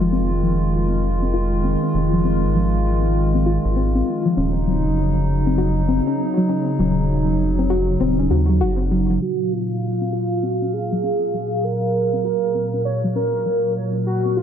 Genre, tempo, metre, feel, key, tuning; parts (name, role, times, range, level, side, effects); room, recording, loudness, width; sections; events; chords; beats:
IDM; 99 BPM; 4/4; swing 62% on 16ths; Gb lydian; A4 = 440 Hz
hollow soft pad; sustained chords; 0.0-14.4 s; Bb2 to F5; -22 LUFS; right 1 dB; chorus
soft round pluck; arpeggios; 0.0-14.4 s; F3 to Gb4; -23 LUFS; left 3 dB; chorus, tape echo
rubbery square bass; bass; 0.0-9.2 s; Eb1 to Eb2; -21 LUFS; equal
warbly nostalgic lead; melody; 9.2-14.4 s; F4 to Db5; -21 LUFS; right 2 dB; wide subtle chorus, tape echo
moderate plate reverb, RT60 3.3 s; echo-heavy mix, low-pass filter; -17 LUFS; side -9 dB against mid
0.0-9.2 A section; 9.2-14.4 B section
filter sweep on synth arpeggio sound 0.0-9.2, 9.2-14.4; filter sweep 9.2-14.4
0.0 Fm7; 4.4 Ebm7; 9.2 Gbmaj7
0.12 0.73 1.34 | 1.94 2.55 3.16 3.76 | 4.37 4.97 5.58 6.19 | 6.79 7.40 8.00 8.61 | 9.22 9.82 10.43 11.03 | 11.64 12.25 12.85 13.46 | 14.06